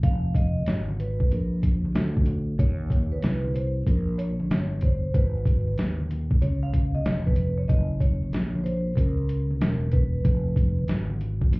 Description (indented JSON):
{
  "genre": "hip hop, jazz-hop",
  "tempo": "94 BPM",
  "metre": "4/4",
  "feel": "swing 66% on 16ths",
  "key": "unclear",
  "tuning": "A4 = 440 Hz",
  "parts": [
    { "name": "vibraphone with soft mallets", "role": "accompaniment", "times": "0.0-10.8 s", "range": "Bb4 to F5", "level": "-35 LUFS", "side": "right 1 dB", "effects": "plate reverb" },
    { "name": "sustaining fretless electric bass", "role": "bass", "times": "0.0-11.6 s", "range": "Fb1 to Eb2", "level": "-26 LUFS", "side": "equal", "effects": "none" },
    { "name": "boom bap sampler-style drum kit", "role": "drums", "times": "0.0-11.6 s", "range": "hi-hat, kick drum, snare drum", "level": "-23 LUFS", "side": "equal", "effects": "none" },
    { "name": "egg shaker and congas", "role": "percussion", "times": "0.0-11.6 s", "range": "none", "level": "-36 LUFS", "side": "left 1 dB", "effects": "none" }
  ],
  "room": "little or no reverb",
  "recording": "heard muffled through a wall, club reverb, vinyl crackle, EQ",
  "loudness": "-22 LUFS",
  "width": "side -26 dB against mid",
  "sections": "0.0-11.6 A section",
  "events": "vibraphone solo 0.0-11.6",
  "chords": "0.0 Fm7b5; 1.3 Bb; 2.6 Eb5; 5.1 Abm; 6.4 Db; 7.7 Gb; 10.2 Fdim"
}